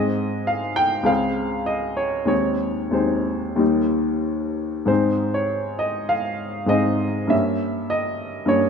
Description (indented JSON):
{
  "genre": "classical, romantic character piece for solo piano",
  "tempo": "91-104 BPM",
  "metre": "4/4",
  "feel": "rubato",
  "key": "Ab major",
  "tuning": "A4 = 439 Hz",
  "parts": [
    { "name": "clear upright piano", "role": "solo", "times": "0.0-8.7 s", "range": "Db2 to G5", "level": "-20 LUFS", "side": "left 1 dB", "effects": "none" }
  ],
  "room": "moderate recital hall reverb, RT60 1.4 s",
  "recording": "none",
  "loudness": "-20 LUFS",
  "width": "side -6 dB against mid",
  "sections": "0.0-8.7 A section",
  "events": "none",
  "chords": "0.0 Ab; 1.1 Dbmaj7; 2.3 Ab/Eb; 3.6 Eb; 4.9 Ab; 7.3 Gdim7",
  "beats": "0.50 1.09 1.69 | 2.31 2.96 3.60 4.26 | 4.89 5.51 6.11 6.71 | 7.32 7.92 8.51"
}